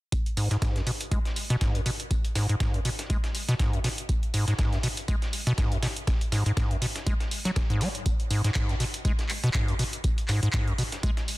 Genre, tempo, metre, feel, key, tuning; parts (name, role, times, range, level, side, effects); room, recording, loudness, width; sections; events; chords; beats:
acid house; 121 BPM; 4/4; swing 56% on 16ths; G# minor; A4 = 440 Hz
dusty soul sampler-style drum kit; drums; 0.1-11.4 s; hi-hat, snare drum, tambourine; -38 LUFS; equal; sidechain pumping on perc, high-pass filter on perc, soft clipping on snare, high-pass filter on snare, sidechain pumping on hats, high-pass filter on hats
electronic kick drum; drums; 0.1-11.1 s; -28 LUFS; equal
punchy analog drum machine; drums; 0.1-11.4 s; handclaps, hi-hat; -34 LUFS; right 1 dB
acid bass, square; riff; 0.4-11.1 s; G#1 to G#3; -28 LUFS; equal; tube saturation, sidechain pumping, ping-pong delay
digital ambience; dense, heavily limited modern master; -24 LUFS; side -19 dB against mid
0.1-11.4 A section
| 0.12 0.62 1.11 1.61 | 2.11 2.60 3.10 3.59 | 4.09 4.59 5.08 5.58 | 6.07 6.57 7.07 7.56 | 8.06 8.55 9.05 9.54 | 10.04 10.54 11.03